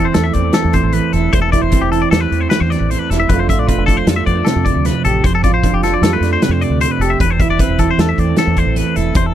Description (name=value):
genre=math rock and midwest emo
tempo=153 BPM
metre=5/4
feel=straight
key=C major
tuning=A4 = 440 Hz
part: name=mellow electric guitar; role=accompaniment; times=0.0-9.3 s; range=E2 to G4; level=-18 LUFS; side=right 6 dB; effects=spring reverb
part: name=twangy electric guitar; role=arpeggios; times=0.0-9.3 s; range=G4 to E5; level=-19 LUFS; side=left 8 dB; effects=tape echo
part: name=deep dub fingered electric bass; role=bass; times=0.0-9.3 s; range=E1 to F2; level=-18 LUFS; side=equal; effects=none
part: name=loose indie drum kit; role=drums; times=0.1-9.2 s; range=hi-hat, kick drum, snare drum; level=-17 LUFS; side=equal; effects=none
room=little or no reverb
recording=none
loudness=-12 LUFS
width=side -11 dB against mid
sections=0.0-9.3 A section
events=none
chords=0.0 C6/E; 3.3 F6; 7.2 C6/E